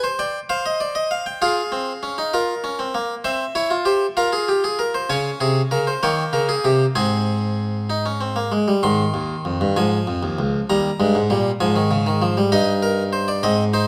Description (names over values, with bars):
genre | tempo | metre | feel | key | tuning
classical, baroque-style 4-part fugue for harpsichord | 65 BPM (dotted quarters) | 6/8 | straight | F minor, Ab major from 5.1 s | A4 = 443 Hz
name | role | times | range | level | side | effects
harpsichord | solo | 0.0-13.9 s | Db2 to C6 | -20 LUFS | equal | none
room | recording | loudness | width
light reverb | close, detailed microphones | -21 LUFS | mono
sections
0.0-5.1 A section; 5.1-8.8 B section; 8.8-13.9 C section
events
none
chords
0.5 Cm; 1.4 Fm; 2.3 Bbmadd9; 3.2 C; 4.2 Fm; 5.1 Bbm7; 6.0 Eb7; 7.0 Ab; 9.8 Dbadd9; 10.7 Eb; 11.6 Ab5; 12.5 Eb/G